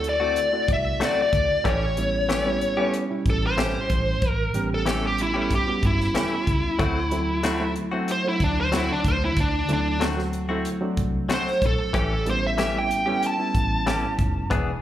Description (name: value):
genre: straight-eighth soul blues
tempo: 93 BPM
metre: 4/4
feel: straight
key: unclear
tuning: A4 = 440 Hz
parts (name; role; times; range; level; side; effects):
- smooth overdriven lead guitar; melody; 0.0-14.5 s; D4 to A5; -24 LUFS; left 1 dB; slapback echo
- barky reed electric piano; accompaniment; 0.0-14.5 s; B2 to G4; -29 LUFS; right 3 dB; overdrive, slapback echo
- vintage muted fingered electric bass; bass; 0.0-14.7 s; E1 to D2; -27 LUFS; equal; none
- tight funk drum kit; drums; 0.0-14.7 s; hi-hat, kick drum, snare drum; -28 LUFS; equal; none
- direct-recorded clean electric guitar; stabs; 0.2-14.7 s; E3 to G#4; -30 LUFS; left 4 dB; slapback echo
room: light reverb, small room ambience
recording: live gig heard through the venue's PA, club reverb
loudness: -21 LUFS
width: side -12 dB against mid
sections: 0.0-14.8 A section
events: lead electric guitar solo 0.0-14.8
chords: 0.0 D7; 1.6 A7; 6.8 D7; 11.9 A7